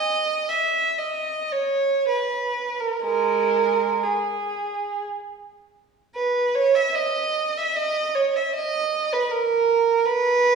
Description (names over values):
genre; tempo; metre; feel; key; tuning
classical, free, expressive piece for unaccompanied violin; 46-81 BPM; 3/4; rubato; G# minor; A4 = 436 Hz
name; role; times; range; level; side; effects
rich violin; solo; 0.0-10.6 s; G#3 to E5; -20 LUFS; right 4 dB; none
room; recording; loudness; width
wet recital hall reverb, RT60 1.5 s; heard from further back in the room, small room reverb; -20 LUFS; side -5 dB against mid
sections
0.0-6.1 A section; 6.1-10.6 A section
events
none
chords
none